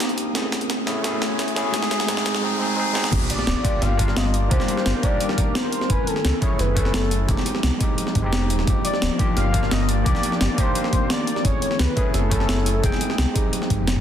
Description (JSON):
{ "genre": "liquid drum and bass", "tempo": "173 BPM", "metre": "4/4", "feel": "straight", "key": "unclear", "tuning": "A4 = 440 Hz", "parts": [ { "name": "overdriven tine electric piano", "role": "accompaniment", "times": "0.0-14.0 s", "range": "Ab3 to Ab5", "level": "-26 LUFS", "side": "equal", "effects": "dub echo" }, { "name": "ethereal airy pad", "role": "sustained chords", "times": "0.0-14.0 s", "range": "F3 to Bb4", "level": "-28 LUFS", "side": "left 1 dB", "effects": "ensemble chorus, built-in reverb" }, { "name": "breakbeat sampler-style drum kit", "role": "drums", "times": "0.0-13.9 s", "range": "crash cymbal, hi-hat, snare drum", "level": "-26 LUFS", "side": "equal", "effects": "overdrive, high-pass filter on hats, high-pass filter on snare, high-pass filter on cymbals, high-pass filter on room" }, { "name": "riser and impact", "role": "sound effects", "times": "0.3-4.5 s", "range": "none", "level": "-31 LUFS", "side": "left 1 dB", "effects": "none" }, { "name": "sub bass with octave", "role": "bass", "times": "3.1-14.0 s", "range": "D1 to C#2", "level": "-22 LUFS", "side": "equal", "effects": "none" }, { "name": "electronic kick drum", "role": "drums", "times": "3.1-14.0 s", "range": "none", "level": "-23 LUFS", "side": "equal", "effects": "overdrive" }, { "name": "warm velvety synth lead", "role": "melody", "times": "3.3-13.5 s", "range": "Ab4 to F5", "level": "-27 LUFS", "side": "equal", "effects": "chorus, vintage 12-bit sampler grit, ping-pong delay" } ], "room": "moderate lush hall reverb, RT60 1.8 s, digital ambience", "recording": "dense, heavily limited modern master", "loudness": "-19 LUFS", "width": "side -9 dB against mid", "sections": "0.0-3.1 A section; 3.1-14.0 B section", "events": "build-up 0.0-3.1; drum fill 0.0-2.4, 3.0; riser 0.3-3.1; drop 3.1-14.0; impact 3.1-4.5", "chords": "0.4 F#m7; 1.7 Fm7; 3.1 Gm7; 4.5 Cm7; 5.9 F#m7; 7.3 Fm7; 8.7 Gm7; 10.1 Cm7; 11.4 F#m7; 12.8 Fm7", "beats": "0.00 | 0.35 0.70 1.04 1.39 | 1.74 2.08 2.43 2.78 | 3.12 3.47 3.82 4.17 | 4.51 4.86 5.21 5.55 | 5.90 6.25 6.59 6.94 | 7.29 7.63 7.98 8.33 | 8.67 9.02 9.37 9.71 | 10.06 10.41 10.76 11.10 | 11.45 11.80 12.14 12.49 | 12.84 13.18 13.53 13.88" }